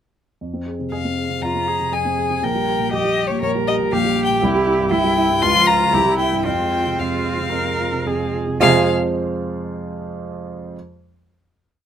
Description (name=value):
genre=quick classical-period movement for piano quartet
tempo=110-121 BPM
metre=4/4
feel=straight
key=F minor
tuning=A4 = 440 Hz
part: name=dark baby grand piano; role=accompaniment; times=0.4-10.8 s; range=Bb1 to F5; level=-21 LUFS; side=right 1 dB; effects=none
part: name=rich violin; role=melody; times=0.9-8.9 s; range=Db5 to C6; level=-20 LUFS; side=left 4 dB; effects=none
part: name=warm viola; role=accompaniment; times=0.9-8.9 s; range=E4 to Bb4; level=-24 LUFS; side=right 2 dB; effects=none
part: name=rich cello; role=second line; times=1.4-8.9 s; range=C3 to Bb4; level=-24 LUFS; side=right 4 dB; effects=none
room=light reverb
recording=close, detailed microphones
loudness=-17 LUFS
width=side -9 dB against mid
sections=0.4-8.6 A section; 8.6-10.7 final chord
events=none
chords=0.4 Fm; 2.4 Bb5; 4.4 C; 5.4 Bbm/Db; 5.9 C7; 6.5 Fm